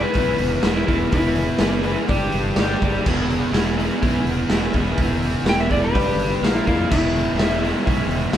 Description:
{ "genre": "garage rock duo or trio", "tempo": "124 BPM", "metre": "4/4", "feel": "straight", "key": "E mixolydian", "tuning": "A4 = 440 Hz", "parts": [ { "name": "electric slide guitar", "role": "melody", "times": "0.0-2.5, 5.5-8.3 s", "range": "E4 to G5", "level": "-24 LUFS", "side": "left 2 dB", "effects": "none" }, { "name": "raw garage guitar", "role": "riff", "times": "0.0-8.4 s", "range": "E3 to E#5", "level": "-22 LUFS", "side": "equal", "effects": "overdrive" }, { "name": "fuzz fingered electric bass", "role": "bass", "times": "0.0-8.4 s", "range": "E1 to E#2", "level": "-26 LUFS", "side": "equal", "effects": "overdrive" }, { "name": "combo organ", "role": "sustained chords", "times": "0.1-8.4 s", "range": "A#3 to G5", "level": "-35 LUFS", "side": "right 1 dB", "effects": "none" }, { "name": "raw garage drum kit", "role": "drums", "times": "0.1-8.4 s", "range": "crash cymbal, hi-hat, kick drum, snare drum", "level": "-22 LUFS", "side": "equal", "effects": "none" } ], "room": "moderate stone room reverb, RT60 1.1 s", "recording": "band playing live in one room", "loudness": "-17 LUFS", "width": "side -10 dB against mid", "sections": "0.0-8.4 A section", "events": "electric slide guitar solo 0.0-8.4; transistor combo organ fill 2.3-3.1", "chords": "0.0 E; 2.1 G5; 3.1 E; 5.9 G5; 6.4 A#5; 6.9 E" }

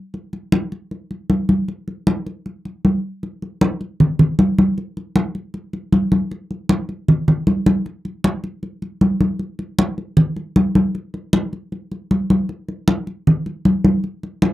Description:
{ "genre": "jazz", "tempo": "155 BPM", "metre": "4/4", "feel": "straight", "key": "none", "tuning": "none", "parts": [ { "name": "congas", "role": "percussion", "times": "0.1-14.5 s", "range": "none", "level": "-16 LUFS", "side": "equal", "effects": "none" } ], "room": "light reverb", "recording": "dry, close 1970s-style studio recording", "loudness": "-17 LUFS", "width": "side -16 dB against mid", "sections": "0.0-3.2 A section; 3.2-14.5 B section", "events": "none", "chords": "none" }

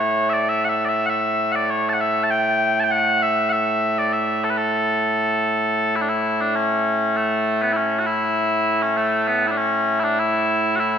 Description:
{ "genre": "scottish traditional, Scottish pipe music", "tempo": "99 BPM", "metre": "4/4", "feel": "straight", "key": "A mixolydian", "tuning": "A4 = 439 Hz", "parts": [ { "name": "mellow small bagpipes", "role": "solo", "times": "0.0-11.0 s", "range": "A2 to A5", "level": "-18 LUFS", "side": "equal", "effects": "none" } ], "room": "wet scoring stage reverb, RT60 2.0 s", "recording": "minimal, uncompressed stereo recording", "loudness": "-18 LUFS", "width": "side -8 dB against mid", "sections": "0.0-5.9 A section; 5.9-11.0 A section", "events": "none", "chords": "none" }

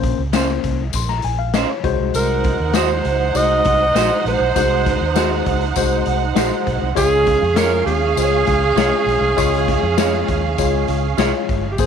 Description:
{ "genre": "uptempo 1960s-style soul", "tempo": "100 BPM", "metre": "4/4", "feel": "straight", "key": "unclear", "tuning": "A4 = 439 Hz", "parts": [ { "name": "tine electric piano", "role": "accompaniment", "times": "0.0-11.9 s", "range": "Ab3 to C6", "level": "-22 LUFS", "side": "left 15 dB", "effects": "none" }, { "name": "vintage muted fingered electric bass", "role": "bass", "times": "0.0-11.9 s", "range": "G1 to F2", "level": "-22 LUFS", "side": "right 2 dB", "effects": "none" }, { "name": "raw garage drum kit", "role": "drums", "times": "0.0-11.9 s", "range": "hi-hat, kick drum, snare drum", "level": "-24 LUFS", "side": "left 4 dB", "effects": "none" }, { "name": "electric guitar through a small old amp", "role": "stabs", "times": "0.3-11.3 s", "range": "Db4 to Db5", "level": "-24 LUFS", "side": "right 15 dB", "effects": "none" }, { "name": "tambourine", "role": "percussion", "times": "0.3-11.9 s", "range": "none", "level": "-31 LUFS", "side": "left 15 dB", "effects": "none" }, { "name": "warm studio string section", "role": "second line", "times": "2.1-11.7 s", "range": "Db4 to Gb5", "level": "-22 LUFS", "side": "right 13 dB", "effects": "none" }, { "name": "breathy alto saxophone", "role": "melody", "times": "2.2-11.9 s", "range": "G4 to Eb5", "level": "-18 LUFS", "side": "right 2 dB", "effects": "none" } ], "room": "small room ambience", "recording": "1960s-style stereo with parts hard left and right", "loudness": "-15 LUFS", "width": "side -7 dB against mid", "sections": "0.0-11.8 A section", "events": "none", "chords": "0.0 Bbmadd9; 1.8 Ab7; 7.0 Db" }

